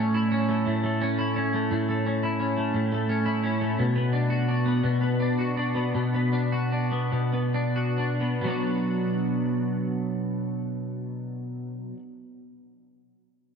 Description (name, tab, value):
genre	pop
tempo	43-58 BPM (dotted quarters)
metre	6/8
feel	straight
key	B minor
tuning	A4 = 440 Hz
part	twelve-string electric guitar	accompaniment	0.0-12.0 s	A2 to F#4	-24 LUFS	equal	double-tracked left and right
room	wet plate reverb, RT60 3.3 s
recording	dreamy mix soaked in reverb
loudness	-24 LUFS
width	side -6 dB against mid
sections	0.0-8.4 A section; 8.4-13.6 B section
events	slowing down 3.8-8.4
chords	0.0 A; 3.8 Bm